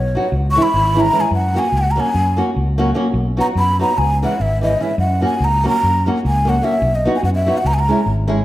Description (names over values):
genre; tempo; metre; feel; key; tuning
balkan folk, Balkan wedding band; 295 BPM (eighths); 9/8; straight; F# mixolydian; A4 = 440 Hz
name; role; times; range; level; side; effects
breathy mellow ney; melody; 0.0-8.1 s; C#5 to C#6; -18 LUFS; equal; none
fretless electric bass; bass; 0.0-8.4 s; G#1 to F#2; -18 LUFS; equal; none
nylon-string guitar; accompaniment; 0.1-8.4 s; E3 to G#4; -20 LUFS; equal; none
room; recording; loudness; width
wet recital hall reverb, RT60 1.3 s; none; -14 LUFS; side -15 dB against mid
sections
0.0-8.4 A section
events
ney solo 0.0-8.4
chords
0.3 C#m; 1.3 F#; 3.2 B; 4.0 C#m; 5.0 F#; 6.8 B; 7.6 C#m